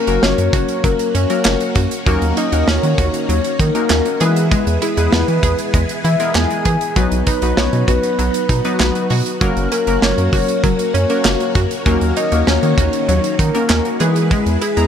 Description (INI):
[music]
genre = synth-pop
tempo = 98 BPM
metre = 4/4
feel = straight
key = unclear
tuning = A4 = 439 Hz
[part]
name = soft octave-layered synth lead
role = melody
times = 0.0-14.9 s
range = G#4 to G#5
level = -21 LUFS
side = left 2 dB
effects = chorus, tape echo
[part]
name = string machine, full ensemble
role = sustained chords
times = 0.0-14.9 s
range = D#3 to B4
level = -24 LUFS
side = left 1 dB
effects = phaser, ensemble chorus
[part]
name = analog pluck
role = arpeggios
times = 0.0-14.8 s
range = F#3 to G#4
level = -24 LUFS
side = right 2 dB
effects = chorus, tape echo
[part]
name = funky polysynth comp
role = accompaniment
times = 0.1-14.9 s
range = F#3 to A#5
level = -21 LUFS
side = left 2 dB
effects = chorus, tape echo
[part]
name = rubbery square bass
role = bass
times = 0.1-14.9 s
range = F#1 to E3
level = -18 LUFS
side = equal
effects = none
[part]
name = modern studio drum kit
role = drums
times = 0.1-14.9 s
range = handclaps, hi-hat, kick drum, snare drum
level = -19 LUFS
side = right 1 dB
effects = tape echo
[sound]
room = light reverb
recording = echo-heavy mix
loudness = -13 LUFS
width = side -8 dB against mid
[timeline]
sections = 0.0-14.9 A section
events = none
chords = 0.0 F#; 2.1 D#m7; 4.2 E; 7.0 B; 9.4 F#; 11.9 D#m7; 14.0 E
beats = 0.23 0.84 1.45 | 2.06 2.68 3.29 3.90 | 4.51 5.13 5.74 6.35 | 6.96 7.58 8.19 8.80 | 9.41 10.02 10.64 11.25 | 11.86 12.47 13.09 13.70 | 14.31